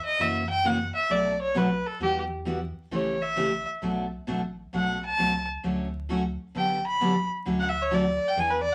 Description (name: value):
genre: country, western swing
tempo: 132 BPM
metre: 4/4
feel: swing 67% on 8ths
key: D major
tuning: A4 = 436 Hz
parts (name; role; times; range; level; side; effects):
- warm fiddle; melody; 0.0-8.7 s; G4 to B5; -28 LUFS; equal; none
- picked steel-string acoustic guitar; accompaniment; 0.2-8.6 s; B2 to G#4; -31 LUFS; equal; none
- pure sine sub bass; bass; 0.2-8.7 s; G1 to F#2; -41 LUFS; equal; none
room: wet studio reverb, RT60 0.6 s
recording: vinyl crackle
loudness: -27 LUFS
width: mono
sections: 0.0-8.7 A section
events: fiddle solo 0.0-8.7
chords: 0.2 F#7; 1.1 Bm7; 2.0 Emadd9; 2.9 A7; 3.8 Bm7; 5.6 Dmaj7; 6.6 Gmaj7; 7.5 Dmaj7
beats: | 0.19 0.64 1.10 1.55 | 2.01 2.46 2.92 3.37 | 3.82 4.28 4.73 5.19 | 5.64 6.10 6.55 7.00 | 7.46 7.91 8.37